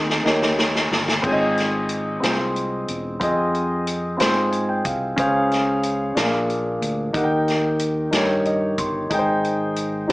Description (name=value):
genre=slow gospel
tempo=61 BPM (dotted quarters)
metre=6/8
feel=straight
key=Ab major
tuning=A4 = 438 Hz
part: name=dark concert grand piano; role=accompaniment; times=0.0-10.1 s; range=Ab2 to C6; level=-20 LUFS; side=equal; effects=none
part: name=fingered electric bass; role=bass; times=0.0-10.1 s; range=Fb1 to Ab2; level=-29 LUFS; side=equal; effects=none
part: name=swinging big-band drum kit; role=drums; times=0.1-10.1 s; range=crash cymbal, hi-hat, kick drum, snare drum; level=-23 LUFS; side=equal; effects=none
room=moderate large studio reverb, RT60 1.3 s, studio reverb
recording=small speaker sound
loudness=-19 LUFS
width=side -20 dB against mid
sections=0.0-1.2 A section; 1.2-10.1 A section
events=drum fill 0.0-1.2; grand piano fill 4.2-5.2, 8.1-9.1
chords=0.2 Eb7; 1.2 Ab6; 3.2 Fm7; 5.2 Dbmaj7; 6.2 Bb7; 7.1 Eb; 9.1 Abmaj7